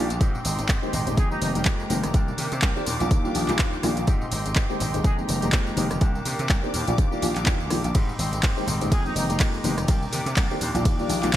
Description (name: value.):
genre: filtered disco house.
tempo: 124 BPM.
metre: 4/4.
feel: swing 57% on 16ths.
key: F dorian.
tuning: A4 = 440 Hz.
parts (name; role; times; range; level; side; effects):
dark grand piano; accompaniment; 0.0-11.4 s; Eb3 to G4; -30 LUFS; left 1 dB; phaser, sidechain pumping.
dark symphonic string section; sustained chords; 0.0-11.4 s; Ab3 to D6; -35 LUFS; right 1 dB; sidechain pumping.
electric guitar with an envelope filter; riff; 0.0-11.4 s; Eb3 to G4; -33 LUFS; equal; sidechain pumping.
gritty slap bass; bass; 0.0-11.4 s; F1 to C3; -28 LUFS; equal; overdrive, sidechain pumping.
punchy analog drum machine; drums; 0.1-11.4 s; handclaps, hi-hat, ride cymbal, rim click, tambourine; -29 LUFS; equal; none.
electronic kick drum; drums; 0.2-11.4 s; none; -22 LUFS; equal; none.
tube shaker and congas; percussion; 0.2-11.4 s; none; -35 LUFS; left 2 dB; none.
dark trumpet section; melody; 1.2-1.5, 5.0-5.2, 8.9-9.2 s; Eb4 to Ab4; -35 LUFS; equal; vintage 12-bit sampler grit, sidechain pumping, ping-pong delay.
room: light reverb, small room reverb.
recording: bright 1980s-style digital production.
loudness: -21 LUFS.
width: side -12 dB against mid.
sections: 0.0-11.4 A section.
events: none.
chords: 0.2 Abmaj7; 1.2 Fm11; 2.1 Cm9; 2.9 Ebmaj9; 4.1 Abmaj7; 5.0 Fm11; 6.0 Cm9; 6.7 Ebmaj9; 8.0 Abmaj7; 8.9 Fm11; 9.9 Cm9; 10.6 Ebmaj9.